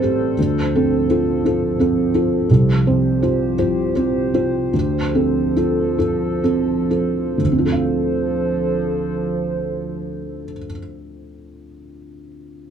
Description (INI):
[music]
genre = neoclassical piano and strings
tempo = 41-58 BPM (dotted quarters)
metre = 6/8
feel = rubato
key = D minor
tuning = A4 = 440 Hz
[part]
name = felt-muted upright piano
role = accompaniment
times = 0.0-12.7 s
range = A1 to F5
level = -18 LUFS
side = right 1 dB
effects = none
[part]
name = warbly tape-like pad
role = sustained chords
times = 0.0-10.5 s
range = F3 to C5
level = -24 LUFS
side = equal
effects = chorus, built-in reverb
[sound]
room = moderate small room reverb, RT60 0.5 s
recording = none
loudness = -16 LUFS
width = side -8 dB against mid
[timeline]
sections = 0.0-7.4 A section; 7.4-12.7 B section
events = slowing down 1.4-7.4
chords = 0.4 Dm7; 2.5 Csus4; 4.7 Dm7